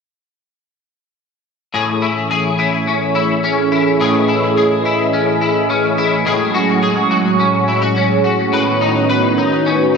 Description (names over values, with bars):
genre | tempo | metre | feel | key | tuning
dream pop | 106 BPM | 4/4 | straight | A lydian | A4 = 442 Hz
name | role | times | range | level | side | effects
phased analog pad | sustained chords | 1.7-10.0 s | A2 to D#5 | -15 LUFS | right 2 dB | phaser, chorus
electric guitar at the edge of break-up | arpeggios | 1.7-10.0 s | A2 to B4 | -16 LUFS | left 4 dB | ensemble chorus, digital delay
room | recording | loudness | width
wet plate reverb, RT60 3.1 s | none | -13 LUFS | side -5 dB against mid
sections
1.7-10.0 A section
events
none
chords
1.7 Amaj7; 6.3 F#sus2/A; 8.5 Badd9/A